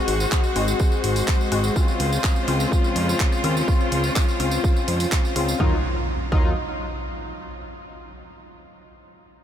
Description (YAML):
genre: melodic techno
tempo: 125 BPM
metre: 4/4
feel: straight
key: Eb dorian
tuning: A4 = 440 Hz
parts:
  - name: bright studio string section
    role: sustained chords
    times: 0.0-5.8 s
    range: Db3 to C5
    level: -28 LUFS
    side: right 1 dB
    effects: sidechain pumping
  - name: sync-sweep polysynth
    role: stabs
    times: 0.0-6.5 s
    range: Gb3 to Gb4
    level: -26 LUFS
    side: left 4 dB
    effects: chorus, sidechain pumping, tape echo
  - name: fat analog bass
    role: bass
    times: 0.1-6.5 s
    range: Ab1 to F2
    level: -24 LUFS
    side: right 1 dB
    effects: sidechain pumping
  - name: house drum kit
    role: drums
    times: 0.1-5.5 s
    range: handclaps, hi-hat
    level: -30 LUFS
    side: right 1 dB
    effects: none
  - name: tambourine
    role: percussion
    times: 0.2-5.6 s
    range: none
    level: -35 LUFS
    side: right 3 dB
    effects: none
  - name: electronic kick drum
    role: drums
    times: 0.3-6.4 s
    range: none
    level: -21 LUFS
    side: right 1 dB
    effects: none
  - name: soft round pluck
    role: arpeggios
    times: 5.6-6.5 s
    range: Eb4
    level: -38 LUFS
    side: right 2 dB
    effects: wide subtle chorus, sidechain pumping, tape echo
  - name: impact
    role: sound effects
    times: 5.6-7.5 s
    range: none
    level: -30 LUFS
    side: right 1 dB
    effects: none
room: light reverb, digital ambience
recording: none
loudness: -19 LUFS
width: side -10 dB against mid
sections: 0.0-5.6 A section; 5.6-7.5 B section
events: none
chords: 0.0 Ab7; 1.8 Dbmaj7; 5.6 Ebmadd9